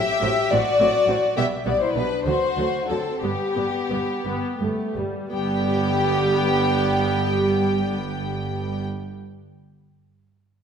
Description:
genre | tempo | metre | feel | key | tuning
quick classical-period movement for string orchestra | 54-70 BPM (dotted quarters) | 6/8 | rubato | G major | A4 = 440 Hz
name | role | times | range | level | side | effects
warm studio violin section | melody | 0.0-8.8 s | B3 to G5 | -29 LUFS | left 4 dB | none
warm studio violin section | second line | 0.0-8.8 s | G4 to E5 | -23 LUFS | left 2 dB | none
dark studio double bass section | bass | 0.0-8.8 s | G1 to D2 | -31 LUFS | right 4 dB | none
warm studio viola section | accompaniment | 0.2-8.8 s | F#3 to C4 | -26 LUFS | right 2 dB | none
warm studio cello section | bass | 0.2-8.8 s | G2 to D3 | -29 LUFS | right 4 dB | none
room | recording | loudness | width
wet scoring stage reverb, RT60 1.5 s | none | -20 LUFS | side -7 dB against mid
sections
0.0-5.3 A section; 5.3-9.5 B section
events
slowing down 0.5-5.3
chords
0.0 D7/A; 1.4 G/B; 2.3 D7; 3.2 G

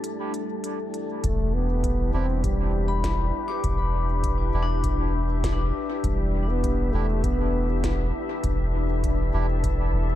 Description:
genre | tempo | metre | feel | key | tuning
ambient dub | 100 BPM | 4/4 | swing 54% on 16ths | E minor | A4 = 440 Hz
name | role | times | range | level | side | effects
deep dark ambient pad | sustained chords | 0.0-10.2 s | G3 to E5 | -32 LUFS | left 2 dB | chorus, built-in reverb
vibraphone with hard mallets | arpeggios | 0.0-10.2 s | D4 to D6 | -34 LUFS | left 6 dB | tape echo
organic electronic drum kit | drums | 0.0-9.8 s | hi-hat, snare drum | -38 LUFS | left 1 dB | overdrive, dub echo
wind-like tuned noise texture | texture | 0.0-10.2 s | A3 to B4 | -36 LUFS | left 2 dB | built-in reverb
trombone with bucket mute | melody | 1.2-8.1 s | G3 to C4 | -31 LUFS | equal | vintage 12-bit sampler grit, dub echo
soft dub sub bass | bass | 1.2-10.2 s | E1 | -24 LUFS | equal | none
electronic kick drum | drums | 1.2-9.8 s | none | -30 LUFS | equal | none
melodica | stabs | 2.1-9.5 s | D4 to G4 | -39 LUFS | right 6 dB | dub echo
room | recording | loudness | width
digital ambience | dark, warm production | -22 LUFS | side -12 dB against mid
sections
0.0-1.2 A section; 1.2-10.2 B section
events
filter sweep on melodica 0.0-1.2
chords
0.0 Em7

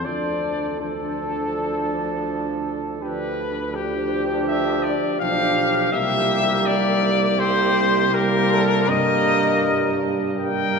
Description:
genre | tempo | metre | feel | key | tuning
classical, brass quintet | 82 BPM | 4/4 | rubato | unclear | A4 = 440 Hz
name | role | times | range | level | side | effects
dark trumpet | melody | 0.0-10.8 s | G4 to G5 | -22 LUFS | left 4 dB | none
warm flugelhorn | second line | 0.0-10.8 s | G4 to Bb4 | -26 LUFS | right 3 dB | none
mellow trombone | accompaniment | 0.0-10.8 s | F3 to G3 | -28 LUFS | right 4 dB | none
warm French horn | accompaniment | 0.0-10.8 s | Bb3 to D4 | -28 LUFS | left 2 dB | none
mellow tuba | bass | 0.0-10.8 s | B1 to G2 | -27 LUFS | right 3 dB | none
room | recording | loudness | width
wet cathedral reverb, RT60 6.1 s | recorded in a church or concert hall | -19 LUFS | side -5 dB against mid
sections
0.0-10.8 A section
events
none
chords
0.1 Dm; 3.0 G7/D; 5.9 C7; 8.9 Eb/G

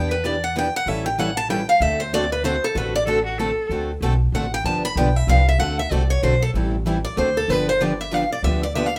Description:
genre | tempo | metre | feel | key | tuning
acoustic string swing (jazz manouche) | 190 BPM | 3/4 | swing 60% on 8ths | D mixolydian | A4 = 440 Hz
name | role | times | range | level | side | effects
picked steel-string acoustic guitar | melody | 0.0-9.0 s | A4 to B5 | -24 LUFS | equal | none
picked plugged-in steel-string acoustic guitar | accompaniment | 0.0-8.9 s | D3 to B4 | -31 LUFS | equal | none
picked steel-string acoustic guitar | accompaniment | 0.0-8.9 s | D3 to A4 | -30 LUFS | equal | none
upright bass | bass | 0.0-9.0 s | G1 to E2 | -25 LUFS | equal | none
clear cello | second line | 3.1-3.7 s | F#4 to A4 | -25 LUFS | equal | none
room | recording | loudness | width
moderate studio reverb, RT60 0.7 s | none | -21 LUFS | mono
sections
0.0-3.7 A section; 3.7-9.0 A section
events
steel-string acoustic guitar solo 0.0-9.0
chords
0.0 Em7; 0.9 A7; 1.8 D7; 4.7 G7; 5.6 D7; 6.5 Am7; 7.2 D7; 7.5 G7

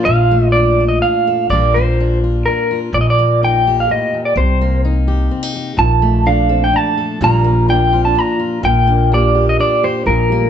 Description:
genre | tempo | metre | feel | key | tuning
acoustic folk duo or small band | 126 BPM | 3/4 | straight | Bb major | A4 = 440 Hz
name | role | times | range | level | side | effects
fingerpicked steel-string acoustic guitar | accompaniment | 0.0-10.5 s | A2 to A4 | -19 LUFS | left 3 dB | none
warm upright piano | arpeggios | 0.0-0.1, 5.8-10.5 s | F3 to G4 | -21 LUFS | right 6 dB | none
electric guitar through a small old amp | melody | 0.1-10.5 s | Bb4 to Bb5 | -15 LUFS | right 1 dB | tremolo, plate reverb
upright bass | bass | 0.1-10.5 s | Bb1 to C2 | -16 LUFS | equal | none
room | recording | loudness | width
moderate large studio reverb, RT60 0.8 s | nothing above 7.9 kHz | -12 LUFS | side -8 dB against mid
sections
0.1-10.5 A section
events
none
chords
0.1 Bbmaj7; 1.5 Gm7/Bb; 2.9 Eb/Bb; 4.4 Cm7; 5.8 Bbmaj7; 7.2 Gm7/Bb; 8.6 Bb6

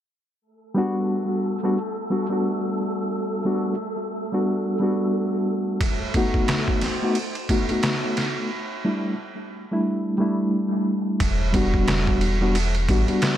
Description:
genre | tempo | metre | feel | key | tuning
trip hop | 89 BPM | 4/4 | swing 59% on 16ths | unclear | A4 = 440 Hz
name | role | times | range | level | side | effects
wind-like tuned noise texture | texture | 1.0-8.5 s | A3 to A4 | -32 LUFS | right 2 dB | built-in reverb
mellow reed electric piano | accompaniment | 0.7-13.4 s | G3 to F#4 | -23 LUFS | left 1 dB | fast tremolo, harmonic tremolo, low-pass filter, tape echo
trip hop sampler-style drum kit | drums | 5.8-13.4 s | kick drum, ride cymbal, snare drum | -24 LUFS | right 1 dB | overdrive
soft dub sub bass | bass | 11.2-13.1 s | E1 to A1 | -23 LUFS | equal | tube saturation
room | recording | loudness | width
light reverb, digital ambience | none | -21 LUFS | side -11 dB against mid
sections
0.4-11.2 A section; 11.2-13.4 B section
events
filter sweep on reed electric piano 0.4-11.2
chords
0.4 Gmaj9; 5.8 B7; 8.5 A7sus4/G; 11.2 Em7

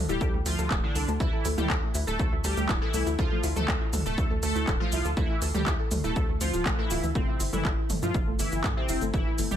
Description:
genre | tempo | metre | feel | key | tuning
melodic techno | 121 BPM | 4/4 | straight | unclear | A4 = 440 Hz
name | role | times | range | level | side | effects
soft round pluck | arpeggios | 0.0-9.6 s | E3 to A5 | -34 LUFS | left 1 dB | ensemble chorus, sidechain pumping, ping-pong delay
tight sequencer bass | bass | 0.0-9.6 s | D1 to G2 | -30 LUFS | equal | sidechain pumping
resonant sweep polysynth | melody | 0.1-9.6 s | C3 to A4 | -32 LUFS | equal | analog chorus, sidechain pumping, tape echo
techno drum kit | drums | 0.1-9.6 s | handclaps, hi-hat, shaker, toms | -32 LUFS | right 1 dB | none
electronic kick drum | drums | 0.2-9.2 s | none | -28 LUFS | equal | none
room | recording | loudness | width
light reverb | none | -25 LUFS | side -10 dB against mid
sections
0.0-9.6 A section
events
none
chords
0.0 Dmadd9; 7.2 G7(no3)

